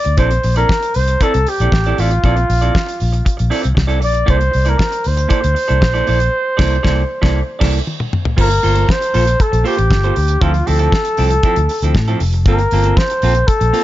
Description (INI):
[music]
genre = disco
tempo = 117 BPM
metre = 4/4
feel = straight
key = unclear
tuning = A4 = 439 Hz
[part]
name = mellow flugelhorn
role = melody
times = 0.0-13.8 s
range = F4 to D5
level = -18 LUFS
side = equal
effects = analog delay
[part]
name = semi-hollow electric guitar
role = accompaniment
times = 0.0-13.8 s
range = F3 to D5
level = -22 LUFS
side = right 4 dB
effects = none
[part]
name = damped 70s drum kit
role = drums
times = 0.0-13.8 s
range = crash cymbal, hi-hat, kick drum, snare drum, toms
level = -17 LUFS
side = equal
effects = none
[part]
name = vintage muted fingered electric bass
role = bass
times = 0.1-13.7 s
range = F1 to A2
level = -15 LUFS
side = equal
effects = none
[sound]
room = small room ambience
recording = nothing above 7.5 kHz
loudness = -12 LUFS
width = side -15 dB against mid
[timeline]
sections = 0.2-8.4 A section; 8.4-13.8 B section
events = band accent 6.3-8.4; drum fill 7.9-8.4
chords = 0.2 Bbmaj9#11; 4.3 C13; 8.4 Gm11; 10.2 Dm9; 12.5 Gm11